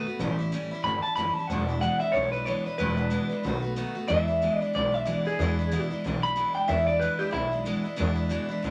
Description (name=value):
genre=rockabilly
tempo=185 BPM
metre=4/4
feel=swing 59% on 8ths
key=E mixolydian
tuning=A4 = 440 Hz
part: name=electric guitar through a small old amp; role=melody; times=0.0-7.5 s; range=E4 to B5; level=-30 LUFS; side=equal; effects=none
part: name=picked steel-string acoustic guitar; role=accompaniment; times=0.0-8.7 s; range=E2 to F#4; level=-33 LUFS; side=equal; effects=none
part: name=upright bass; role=bass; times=0.1-8.7 s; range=E1 to E2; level=-32 LUFS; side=equal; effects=none
room=wet studio ambience, RT60 0.5 s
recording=none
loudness=-27 LUFS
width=mono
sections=0.0-4.1 A section; 4.1-8.7 A section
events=none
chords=0.2 A7; 1.5 E7; 3.4 B7; 4.1 E7